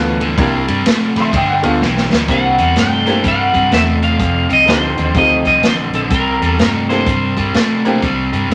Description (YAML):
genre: electric blues shuffle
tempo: 126 BPM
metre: 4/4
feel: swing 63% on 8ths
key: C mixolydian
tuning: A4 = 440 Hz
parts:
  - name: bright upright piano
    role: accompaniment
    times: 0.0-8.0 s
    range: G3 to C6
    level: -21 LUFS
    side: equal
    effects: none
  - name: crunchy overdriven guitar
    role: riff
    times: 0.0-8.5 s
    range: F2 to A3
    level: -19 LUFS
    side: equal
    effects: none
  - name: vintage muted fingered electric bass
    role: bass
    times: 0.0-8.5 s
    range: F1 to A2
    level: -23 LUFS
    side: equal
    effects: none
  - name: swinging big-band drum kit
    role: drums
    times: 0.2-8.5 s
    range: hi-hat, kick drum, ride cymbal, snare drum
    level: -20 LUFS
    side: equal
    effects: none
  - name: electric guitar at the edge of break-up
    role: melody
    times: 2.3-7.5 s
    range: A4 to G5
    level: -18 LUFS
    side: equal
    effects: spring reverb
room: wet club reverb, RT60 0.5 s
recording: none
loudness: -14 LUFS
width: mono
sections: 0.0-2.3 A section; 2.3-8.5 B section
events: drum fill 1.8-2.3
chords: 0.4 C7; 1.3 G7; 2.3 C7; 4.2 F7; 6.1 C7